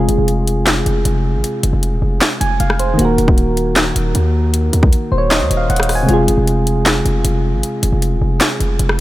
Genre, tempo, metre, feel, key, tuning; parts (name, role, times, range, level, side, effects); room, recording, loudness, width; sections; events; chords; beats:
hip hop, trap; 155 BPM; 4/4; half-time; F phrygian; A4 = 440 Hz
soft electric-piano-like synth keys; accompaniment; 0.0-9.0 s; C3 to Ab5; -17 LUFS; equal; chorus
hard-hitting 808-style bass; bass; 0.0-9.0 s; Eb1 to Eb2; -17 LUFS; equal
trap drum kit; drums; 0.1-9.0 s; handclaps, hi-hat, kick drum, rim click, snare drum; -17 LUFS; equal
digital ambience; -13 LUFS; side -16 dB against mid
0.0-9.0 A section
synth keys fill 2.2-3.0, 4.9-6.1
0.0 Fm; 3.0 Ebm; 6.1 Fm
0.28 0.67 1.05 | 1.44 1.83 2.21 2.60 | 2.99 3.38 3.76 4.15 | 4.54 4.92 5.31 5.70 | 6.08 6.47 6.86 7.25 | 7.63 8.02 8.41 8.79